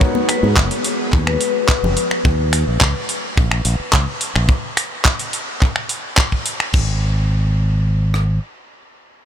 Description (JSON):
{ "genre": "nu-disco, nu disco", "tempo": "107 BPM", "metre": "4/4", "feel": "straight", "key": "unclear", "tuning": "A4 = 440 Hz", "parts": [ { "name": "string machine, full ensemble", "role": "sustained chords", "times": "0.0-2.2 s", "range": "G#3 to G#4", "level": "-27 LUFS", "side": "equal", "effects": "ensemble chorus, vintage 12-bit sampler grit, sidechain pumping" }, { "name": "tight funk drum kit", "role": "drums", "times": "0.0-8.3 s", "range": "kick drum, rim click", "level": "-16 LUFS", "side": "equal", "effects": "none" }, { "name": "congas", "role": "percussion", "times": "0.1-1.9 s", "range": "none", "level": "-28 LUFS", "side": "left 3 dB", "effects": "none" }, { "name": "vibraphone with medium hard mallets", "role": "melody", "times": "0.3-2.1 s", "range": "B4", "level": "-24 LUFS", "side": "left 5 dB", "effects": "tape echo" }, { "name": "pop drum kit", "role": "drums", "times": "0.3-6.9 s", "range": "crash cymbal, finger snaps, handclaps, hi-hat", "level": "-20 LUFS", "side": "equal", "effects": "none" }, { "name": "fingered electric bass with an envelope filter", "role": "bass", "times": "0.4-8.4 s", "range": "F#1 to G#2", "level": "-17 LUFS", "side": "equal", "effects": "none" } ], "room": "light reverb, studio ambience", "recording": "none", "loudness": "-15 LUFS", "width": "side -9 dB against mid", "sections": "0.0-6.7 A section; 6.7-9.0 B section", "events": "drop 0.0-6.7", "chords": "0.0 G#m7; 2.2 D#5; 4.5 N.C.", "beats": "| 0.01 0.57 1.13 1.69 | 2.25 2.81 3.37 3.93 | 4.49 5.05 5.62 6.18 | 6.74 7.30 7.86" }